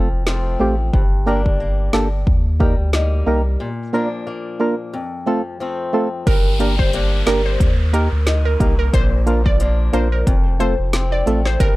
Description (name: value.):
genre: dancehall.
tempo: 90 BPM.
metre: 4/4.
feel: swing 56% on 16ths.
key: unclear.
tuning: A4 = 440 Hz.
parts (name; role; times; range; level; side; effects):
percussive organ stab; accompaniment; 0.0-11.4 s; A3 to Bb4; -19 LUFS; right 2 dB; chorus.
fingerpicked swing-style acoustic guitar; arpeggios; 0.0-11.8 s; F2 to Eb4; -26 LUFS; left 3 dB; none.
saturated sub bass; bass; 0.0-11.8 s; F1 to Eb2; -18 LUFS; equal; none.
afro-pop drum kit; drums; 0.3-11.8 s; hi-hat, kick drum, snare drum; -18 LUFS; equal; none.
glassy wavetable pluck; melody; 6.3-11.7 s; Bb4 to D5; -24 LUFS; right 1 dB; chorus, tape echo.
downlifter; sound effects; 6.3-11.6 s; none; -31 LUFS; left 1 dB; none.
room: little or no reverb.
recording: dry, gritty hardware recording.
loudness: -15 LUFS.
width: side -19 dB against mid.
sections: 0.0-6.3 A section; 6.3-11.8 B section.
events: break 3.6-6.3.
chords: 0.0 F; 0.9 Gm; 2.3 Eb; 3.6 Bb; 4.9 F; 6.3 Gm; 7.6 Eb; 8.9 Bb; 10.3 F.